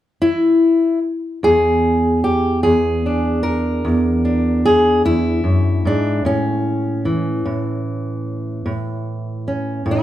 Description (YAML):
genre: acoustic country blues, solo or duo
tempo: 50 BPM (dotted quarters)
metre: 12/8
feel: straight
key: E mixolydian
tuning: A4 = 440 Hz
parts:
  - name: fingerpicked steel-string acoustic guitar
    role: solo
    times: 0.2-10.0 s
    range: E2 to A#4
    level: -15 LUFS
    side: equal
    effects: none
room: moderate large studio reverb, RT60 0.8 s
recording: band playing live in one room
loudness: -15 LUFS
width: side -13 dB against mid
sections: 0.0-1.4 A section; 1.4-10.0 B section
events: none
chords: 0.0 N.C.; 1.4 E7; 6.3 A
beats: 0.23 | 1.43 2.64 3.85 5.05 | 6.26 7.46 8.67 9.88